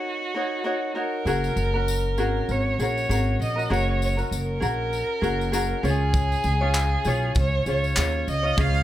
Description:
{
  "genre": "acoustic pop",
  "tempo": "98 BPM",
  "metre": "4/4",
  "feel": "swing 55% on 16ths",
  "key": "F# major",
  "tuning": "A4 = 437 Hz",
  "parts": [
    { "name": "dark violin", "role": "melody", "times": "0.0-8.8 s", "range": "F#4 to E#5", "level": "-27 LUFS", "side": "right 1 dB", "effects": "tape echo" },
    { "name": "ukulele", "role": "accompaniment", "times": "0.0-8.8 s", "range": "C#4 to C#5", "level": "-28 LUFS", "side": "left 1 dB", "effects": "none" },
    { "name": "upright bass", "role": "bass", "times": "1.3-8.8 s", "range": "F#1 to D#2", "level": "-24 LUFS", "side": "equal", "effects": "none" },
    { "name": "tambourine", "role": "percussion", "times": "1.3-8.8 s", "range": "none", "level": "-40 LUFS", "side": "left 9 dB", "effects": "none" },
    { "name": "modern studio drum kit", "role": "drums", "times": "6.1-8.7 s", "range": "handclaps, kick drum", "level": "-25 LUFS", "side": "equal", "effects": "none" }
  ],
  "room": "light reverb",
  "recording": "none",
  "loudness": "-22 LUFS",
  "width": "side -13 dB against mid",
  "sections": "0.0-1.3 A section; 1.3-8.8 B section",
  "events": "none",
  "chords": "0.0 D#m7; 1.3 F#add9; 5.8 C#"
}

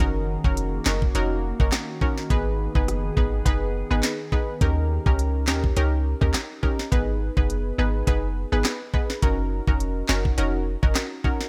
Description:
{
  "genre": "dancehall",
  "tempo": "104 BPM",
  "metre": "4/4",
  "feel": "swing 56% on 16ths",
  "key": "G# dorian",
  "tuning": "A4 = 439 Hz",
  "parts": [
    { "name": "analog pluck", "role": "accompaniment", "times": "0.0-11.5 s", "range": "B3 to B4", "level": "-30 LUFS", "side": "equal", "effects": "chorus" },
    { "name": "glassy FM pad", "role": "sustained chords", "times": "0.1-4.6 s", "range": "D#3 to G#4", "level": "-38 LUFS", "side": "equal", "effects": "ensemble chorus, built-in reverb, sidechain pumping" },
    { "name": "clean 808-style bass", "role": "bass", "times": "0.0-10.9 s", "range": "E#1 to D#2", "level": "-27 LUFS", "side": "equal", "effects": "none" },
    { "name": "afro-pop drum kit", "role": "drums", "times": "0.0-11.5 s", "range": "handclaps, hi-hat, kick drum, rim click, snare drum", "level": "-25 LUFS", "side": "equal", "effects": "none" }
  ],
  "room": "digital ambience",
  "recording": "none",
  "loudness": "-24 LUFS",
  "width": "mono",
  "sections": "0.0-4.6 A section; 4.6-11.5 B section",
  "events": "none",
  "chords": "0.0 F#6; 2.3 G#m; 4.6 D#7; 6.9 G#m; 9.2 F#6"
}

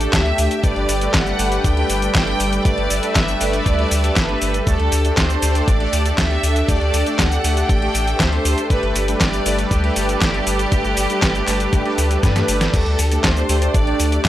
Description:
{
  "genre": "italo disco",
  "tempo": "119 BPM",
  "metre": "4/4",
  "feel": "straight",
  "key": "G major",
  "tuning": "A4 = 441 Hz",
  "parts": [
    { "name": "bright symphonic violin section", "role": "melody", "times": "0.0-14.3 s", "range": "G4 to G5", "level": "-24 LUFS", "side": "right 1 dB", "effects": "analog delay" },
    { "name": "lush unison pad", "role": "sustained chords", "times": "0.0-14.3 s", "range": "G3 to E5", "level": "-23 LUFS", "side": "equal", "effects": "chorus" },
    { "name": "analog synth brass", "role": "stabs", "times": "0.0-14.3 s", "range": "A3 to E5", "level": "-25 LUFS", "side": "right 1 dB", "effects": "chorus" },
    { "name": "round analog bass", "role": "bass", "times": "0.0-14.3 s", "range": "G1 to G2", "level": "-21 LUFS", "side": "equal", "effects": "none" },
    { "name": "detuned 8-bit digital drum machine", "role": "drums", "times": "0.0-14.3 s", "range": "cabasa, crash cymbal, handclaps, hi-hat, snare drum", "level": "-21 LUFS", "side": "equal", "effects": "overdrive" },
    { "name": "electronic kick drum", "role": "drums", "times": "0.1-14.3 s", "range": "none", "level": "-19 LUFS", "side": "equal", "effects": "none" },
    { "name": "swell", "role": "sound effects", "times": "11.9-12.7 s", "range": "none", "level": "-32 LUFS", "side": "right 2 dB", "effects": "none" }
  ],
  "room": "little or no reverb",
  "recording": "dry, gritty hardware recording",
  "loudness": "-15 LUFS",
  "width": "side -13 dB against mid",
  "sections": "0.0-14.3 A section",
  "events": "swell 11.9-12.7; drum fill 12.2-12.7",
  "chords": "0.0 Dsus4; 0.6 Gadd9; 4.7 Dsus4; 8.7 Gadd9; 12.7 Dsus4"
}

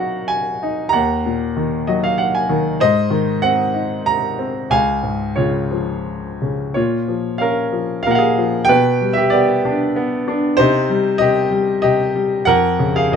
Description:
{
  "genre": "classical, lyrical solo piano",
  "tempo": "84-99 BPM",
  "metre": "3/4",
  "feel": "rubato",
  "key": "Db major",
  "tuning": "A4 = 440 Hz",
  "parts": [
    { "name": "clear grand piano", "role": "solo", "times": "0.0-13.2 s", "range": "Db2 to Bb5", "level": "-15 LUFS", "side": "equal", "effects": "none" }
  ],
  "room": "light reverb",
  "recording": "close, detailed microphones",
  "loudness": "-15 LUFS",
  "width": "side -7 dB against mid",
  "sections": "0.0-6.8 A section; 6.8-13.2 B section",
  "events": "grand piano fill 1.6-2.8",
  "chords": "0.0 Cm7b5; 0.9 Ebm; 2.8 Ab7; 4.7 Db; 6.8 Bbm; 8.7 G/B; 10.6 Cm; 12.5 Bbm/F"
}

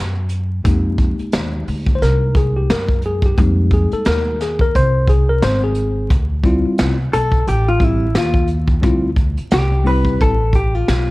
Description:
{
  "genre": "hip hop, jazz-hop",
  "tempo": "88 BPM",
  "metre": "4/4",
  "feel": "swing 58% on 16ths",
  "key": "unclear",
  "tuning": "A4 = 440 Hz",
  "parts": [
    { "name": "upright bass", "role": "bass", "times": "0.0-11.1 s", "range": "Ab1 to F#2", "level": "-18 LUFS", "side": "equal", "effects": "none" },
    { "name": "vintage brush drum kit", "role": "drums", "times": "0.3-11.1 s", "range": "hi-hat, kick drum, snare drum", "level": "-18 LUFS", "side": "equal", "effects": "none" },
    { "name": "mellow tine electric piano", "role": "accompaniment", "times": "0.6-10.4 s", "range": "G3 to C5", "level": "-20 LUFS", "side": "left 2 dB", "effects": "medium stereo tremolo" },
    { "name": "vintage hollow-body jazz guitar", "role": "melody", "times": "7.1-11.1 s", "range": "E4 to B4", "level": "-19 LUFS", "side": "left 1 dB", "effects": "analog delay" }
  ],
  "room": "small room ambience",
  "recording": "dark, warm production, vinyl crackle",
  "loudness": "-14 LUFS",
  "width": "side -20 dB against mid",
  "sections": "0.0-6.1 A section; 6.1-11.1 A section",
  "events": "tine electric piano solo 0.0-6.1; hollow-body jazz guitar solo 6.1-11.1",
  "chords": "0.0 N.C.; 0.6 Fm11; 6.1 Dm11"
}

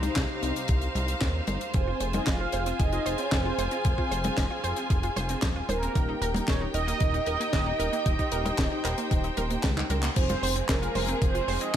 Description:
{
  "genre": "italo disco",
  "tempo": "114 BPM",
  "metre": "4/4",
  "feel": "straight",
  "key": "F minor",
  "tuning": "A4 = 440 Hz",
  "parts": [
    { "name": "rich studio string section", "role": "sustained chords", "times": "0.0-11.8 s", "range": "F3 to Ab5", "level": "-33 LUFS", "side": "left 1 dB", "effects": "none" },
    { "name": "dark grand piano", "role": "stabs", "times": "0.0-0.6 s", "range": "C3 to C5", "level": "-38 LUFS", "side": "left 6 dB", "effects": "ping-pong delay" },
    { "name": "chorused synth bass", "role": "bass", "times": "0.0-11.8 s", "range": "Eb1 to Eb2", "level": "-31 LUFS", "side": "equal", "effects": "none" },
    { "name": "tight funk drum kit", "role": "drums", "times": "0.0-11.8 s", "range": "crash cymbal, handclaps, hi-hat, snare drum, toms", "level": "-32 LUFS", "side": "left 2 dB", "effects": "studio reverb" },
    { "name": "electronic kick drum", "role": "drums", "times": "0.2-11.8 s", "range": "none", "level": "-27 LUFS", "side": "equal", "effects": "studio reverb" },
    { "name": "mellow synth brass", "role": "melody", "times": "1.7-11.8 s", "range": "Bb3 to F5", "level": "-31 LUFS", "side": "right 3 dB", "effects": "chorus, tape echo" },
    { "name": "analog pluck", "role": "arpeggios", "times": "1.7-11.8 s", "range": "Eb3 to C5", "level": "-35 LUFS", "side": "right 4 dB", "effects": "chorus, ping-pong delay" }
  ],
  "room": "light reverb",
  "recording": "none",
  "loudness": "-25 LUFS",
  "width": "side -10 dB against mid",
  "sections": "0.0-10.2 A section; 10.2-11.8 B section",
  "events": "drum fill 9.8-10.2; band accent 10.0",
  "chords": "0.0 Cm; 1.7 Fm; 6.0 Eb; 10.2 Fm"
}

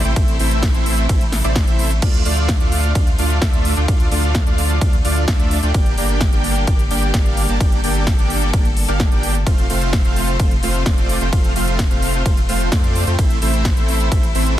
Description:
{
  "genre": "EDM, festival progressive house",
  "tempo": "129 BPM",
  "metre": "4/4",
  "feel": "straight",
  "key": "D minor",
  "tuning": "A4 = 442 Hz",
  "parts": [
    { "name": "clear studio string section", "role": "sustained chords", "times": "0.0-14.6 s", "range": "C3 to A4", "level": "-28 LUFS", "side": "left 2 dB", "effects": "sidechain pumping" },
    { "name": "dense compressed supersaw", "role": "riff", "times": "0.0-14.6 s", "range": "A3 to A5", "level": "-22 LUFS", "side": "right 1 dB", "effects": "sidechain pumping, tape echo" },
    { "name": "saturated sub bass", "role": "bass", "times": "0.0-14.6 s", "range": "F1 to F2", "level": "-20 LUFS", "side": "equal", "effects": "sidechain pumping" },
    { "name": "big-room dance drum kit", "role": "drums", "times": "0.0-14.6 s", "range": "crash cymbal, hi-hat, ride cymbal, snare drum", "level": "-25 LUFS", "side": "equal", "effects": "none" },
    { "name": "electronic kick drum", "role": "drums", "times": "0.2-14.2 s", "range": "none", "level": "-17 LUFS", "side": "equal", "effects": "none" }
  ],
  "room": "little or no reverb",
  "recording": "dense, heavily limited modern master",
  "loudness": "-14 LUFS",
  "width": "side -12 dB against mid",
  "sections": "0.0-14.6 A section",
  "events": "none",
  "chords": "0.0 Am; 2.0 Dm; 5.7 Gm; 9.5 F; 13.2 Am"
}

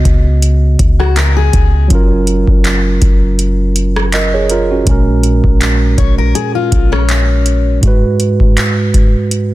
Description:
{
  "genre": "contemporary R&B",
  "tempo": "81 BPM",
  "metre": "4/4",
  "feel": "swing 54% on 16ths",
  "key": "F# major",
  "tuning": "A4 = 441 Hz",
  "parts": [
    { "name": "mellow tine electric piano", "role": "accompaniment", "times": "0.0-9.5 s", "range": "G#2 to D#5", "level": "-15 LUFS", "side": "right 3 dB", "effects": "none" },
    { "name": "clean 808-style bass", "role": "bass", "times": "0.0-7.8 s", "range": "F#1 to C#2", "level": "-12 LUFS", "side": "equal", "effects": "none" },
    { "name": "booming analog drum machine", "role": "drums", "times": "0.1-9.5 s", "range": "handclaps, hi-hat, kick drum, rim click", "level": "-13 LUFS", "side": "equal", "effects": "overdrive" },
    { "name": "fingerpicked steel-string acoustic guitar", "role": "arpeggios", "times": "1.0-7.8 s", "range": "C#4 to C#5", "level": "-18 LUFS", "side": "left 11 dB", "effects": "tape echo" }
  ],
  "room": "little or no reverb",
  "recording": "dense, heavily limited modern master",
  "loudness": "-9 LUFS",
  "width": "side -16 dB against mid",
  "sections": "0.0-9.5 A section",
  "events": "none",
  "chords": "0.0 C#9sus4; 1.9 F#maj7; 4.9 A#m7; 7.8 G#m7"
}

